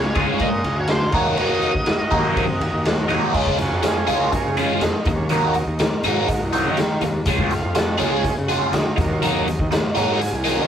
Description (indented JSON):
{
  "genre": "psychedelic rock",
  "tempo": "122 BPM",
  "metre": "4/4",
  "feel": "straight",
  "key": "Eb dorian",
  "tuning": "A4 = 441 Hz",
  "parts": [
    { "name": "octave-fuzz lead guitar", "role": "melody", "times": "0.0-2.8 s", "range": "C5 to Eb5", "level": "-26 LUFS", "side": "equal", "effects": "wah, distortion" },
    { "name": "combo organ", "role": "sustained chords", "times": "0.0-10.7 s", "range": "F3 to Bb4", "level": "-28 LUFS", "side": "right 3 dB", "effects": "none" },
    { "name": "fuzz fingered electric bass", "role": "bass", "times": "0.0-10.7 s", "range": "C2 to Eb3", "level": "-24 LUFS", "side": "equal", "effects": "overdrive" },
    { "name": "congas", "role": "percussion", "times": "0.0-10.7 s", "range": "none", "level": "-39 LUFS", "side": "left 1 dB", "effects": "none" },
    { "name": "crunchy overdriven guitar", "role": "riff", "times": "0.2-10.7 s", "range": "Eb3 to Ab4", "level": "-20 LUFS", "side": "equal", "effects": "phaser" },
    { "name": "raw garage drum kit", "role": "drums", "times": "0.2-10.6 s", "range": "crash cymbal, hi-hat, kick drum, ride cymbal, snare drum", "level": "-23 LUFS", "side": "equal", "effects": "none" }
  ],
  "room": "wet booth ambience, RT60 0.2 s",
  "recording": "rough rehearsal-room recording",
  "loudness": "-18 LUFS",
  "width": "side -9 dB against mid",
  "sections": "0.0-3.4 A section; 3.4-10.7 B section",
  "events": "transistor combo organ solo 3.4-10.7",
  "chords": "0.0 Db; 1.1 Ebm; 3.4 Db; 5.1 Ebm; 7.3 Db; 9.0 Ebm"
}